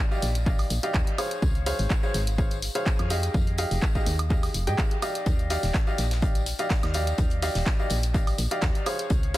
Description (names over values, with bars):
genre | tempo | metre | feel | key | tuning
piano house | 125 BPM | 4/4 | swing 53% on 16ths | Eb major | A4 = 438 Hz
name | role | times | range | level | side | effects
clear upright piano | riff | 0.0-9.4 s | G4 to G5 | -30 LUFS | equal | sidechain pumping, dub echo
tambourine | percussion | 0.1-9.4 s | none | -43 LUFS | left 7 dB | none
solid FM bass | bass | 0.2-9.4 s | Eb1 to Ab2 | -27 LUFS | equal | sidechain pumping
punchy analog drum machine | drums | 0.2-9.4 s | handclaps, hi-hat, woodblock | -33 LUFS | right 1 dB | none
electronic kick drum | drums | 0.5-9.2 s | none | -25 LUFS | equal | none
modern studio drum kit | drums | 5.3-9.4 s | hi-hat, snare drum | -41 LUFS | left 3 dB | sidechain pumping on hats, high-pass filter on hats, high-pass filter on snare, high-pass filter on room
room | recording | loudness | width
little or no reverb | dense, heavily limited modern master | -23 LUFS | side -16 dB against mid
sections
0.0-9.4 A section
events
none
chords
0.0 Ebmaj9; 1.2 Dbmaj7; 3.1 Fm9; 5.3 Ebmaj9; 8.9 Dbmaj7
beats
0.46 0.94 | 1.42 1.90 2.38 2.86 | 3.34 3.82 4.30 4.78 | 5.26 5.74 6.22 6.70 | 7.18 7.66 8.14 8.62 | 9.10